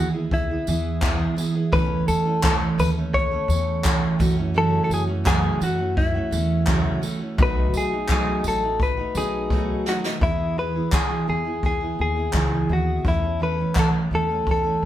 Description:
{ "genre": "acoustic pop", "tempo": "85 BPM", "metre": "4/4", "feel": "straight", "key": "E major", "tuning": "A4 = 440 Hz", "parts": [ { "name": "direct-recorded clean electric guitar", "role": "melody", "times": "0.0-14.8 s", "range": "E4 to C#5", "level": "-25 LUFS", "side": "left 2 dB", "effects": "none" }, { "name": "picked steel-string acoustic guitar", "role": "accompaniment", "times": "0.0-14.9 s", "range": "F#2 to A4", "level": "-25 LUFS", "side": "right 3 dB", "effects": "none" }, { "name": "upright bass", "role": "bass", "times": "0.0-14.9 s", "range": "A1 to E3", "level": "-26 LUFS", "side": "equal", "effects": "none" }, { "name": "jazz brush drum kit", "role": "drums", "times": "0.3-14.6 s", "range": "handclaps, kick drum, snare drum, tambourine", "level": "-24 LUFS", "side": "equal", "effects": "none" } ], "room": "moderate studio reverb, RT60 0.6 s", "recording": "band playing live in one room", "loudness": "-20 LUFS", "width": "side -12 dB against mid", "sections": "0.0-10.2 A section; 10.2-14.9 B section", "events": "drum fill 9.5-10.2", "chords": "0.0 E; 1.7 A; 4.2 F#m7; 7.4 B7; 10.2 E; 13.0 A/E", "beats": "0.31 1.02 | 1.73 2.43 3.14 3.85 | 4.55 5.26 5.97 6.67 | 7.38 8.09 8.80 9.51 | 10.21 10.92 11.63 12.34 | 13.05 13.76 14.47" }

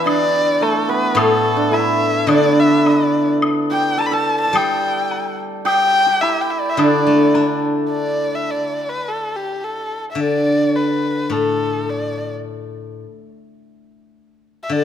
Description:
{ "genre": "chinese traditional, Chinese chamber ensemble", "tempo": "106 BPM", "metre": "2/4", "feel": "straight", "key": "D zhi mode", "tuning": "A4 = 440 Hz", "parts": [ { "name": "warm erhu", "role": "melody", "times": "0.0-12.3, 14.6-14.8 s", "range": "G4 to B5", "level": "-19 LUFS", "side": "left 1 dB", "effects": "none" }, { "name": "hammered dulcimer", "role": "second line", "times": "0.0-10.5 s", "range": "A3 to A4", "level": "-21 LUFS", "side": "right 4 dB", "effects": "none" }, { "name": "steel-string zither", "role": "accompaniment", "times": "0.0-14.8 s", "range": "A2 to D4", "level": "-19 LUFS", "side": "left 2 dB", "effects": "none" }, { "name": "woodblock", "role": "percussion", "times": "0.1-7.5 s", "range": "none", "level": "-26 LUFS", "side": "left 4 dB", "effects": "none" } ], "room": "moderate concert hall reverb, RT60 2.1 s", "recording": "close, detailed microphones", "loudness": "-15 LUFS", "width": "side -9 dB against mid", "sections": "0.0-7.9 A section; 7.9-14.8 B section", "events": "none", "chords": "none", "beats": "| 0.07 0.62 | 1.18 1.73 | 2.29 2.86 | 3.43 4.00 | 4.55 5.11 | 5.66 6.22 | 6.78 7.34 | 7.92 8.49 | 9.06 9.62 | 10.18 10.75 | 11.31 11.88 | 12.46 13.03 | 13.60 14.16 | 14.72" }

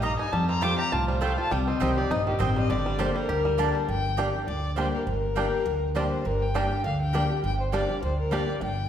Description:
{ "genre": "bluegrass", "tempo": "202 BPM", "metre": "4/4", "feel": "swing 55% on 8ths", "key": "G minor", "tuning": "A4 = 439 Hz", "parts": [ { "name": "dark fiddle", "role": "melody", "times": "0.0-8.9 s", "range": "G4 to D6", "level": "-29 LUFS", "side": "left 3 dB", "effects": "none" }, { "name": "picked steel-string acoustic guitar", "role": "accompaniment", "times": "0.0-8.9 s", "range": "F2 to A4", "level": "-30 LUFS", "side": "left 2 dB", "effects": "none" }, { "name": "bluegrass banjo", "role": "arpeggios", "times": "0.0-8.4 s", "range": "D3 to G4", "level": "-33 LUFS", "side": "right 2 dB", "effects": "none" }, { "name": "mandolin", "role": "stabs", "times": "0.0-8.4 s", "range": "A3 to Bb5", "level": "-33 LUFS", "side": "right 4 dB", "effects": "none" }, { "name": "upright bass", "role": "bass", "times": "0.0-8.9 s", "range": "G1 to F2", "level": "-29 LUFS", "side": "right 1 dB", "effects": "none" } ], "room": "wet recital hall reverb, RT60 1.5 s", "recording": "recorded in a church or concert hall", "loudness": "-24 LUFS", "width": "side -9 dB against mid", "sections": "0.0-3.9 A section; 3.9-8.9 B section", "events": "fiddle solo 0.0-3.9", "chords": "0.3 Fadd9; 1.5 Cm; 2.7 Gmadd9", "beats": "0.03 | 0.33 0.62 0.92 1.22 | 1.51 1.81 2.10 2.40 | 2.70 3.00 3.29 3.59 | 3.88 4.18 4.48 4.77 | 5.07 5.37 5.66 5.96 | 6.25 6.55 6.84 7.14 | 7.44 7.73 8.03 8.32 | 8.62" }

